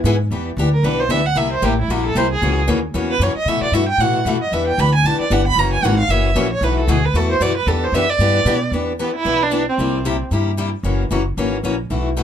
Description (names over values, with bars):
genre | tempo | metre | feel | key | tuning
acoustic string swing (jazz manouche) | 228 BPM | 4/4 | swing 58% on 8ths | E minor | A4 = 440 Hz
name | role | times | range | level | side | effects
upright bass | bass | 0.0-12.2 s | F#1 to B2 | -20 LUFS | equal | none
picked steel-string acoustic guitar | accompaniment | 0.1-12.2 s | B2 to G#4 | -20 LUFS | left 4 dB | none
warm violin | melody | 0.7-10.2 s | B3 to B5 | -19 LUFS | right 3 dB | none
room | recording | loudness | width
little or no reverb | close, detailed microphones, faint mains hum | -15 LUFS | side -9 dB against mid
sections
0.3-8.7 A section; 8.7-12.2 B section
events
violin solo 0.3-8.7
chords
0.3 Em7; 1.4 C7; 2.4 F#7; 3.5 B7sus4; 4.5 Em7; 5.6 F#7; 6.6 B7sus4; 7.7 Em7; 9.8 C7; 10.8 F#7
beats
0.04 | 0.31 0.57 0.83 1.10 | 1.36 1.62 1.89 2.15 | 2.41 2.68 2.94 3.20 | 3.46 3.73 3.99 4.25 | 4.52 4.78 5.04 5.31 | 5.57 5.83 6.10 6.36 | 6.62 6.89 7.15 7.41 | 7.68 7.94 8.20 8.47 | 8.73 8.99 9.26 9.52 | 9.79 10.05 10.31 10.58 | 10.84 11.11 11.37 11.64 | 11.90 12.16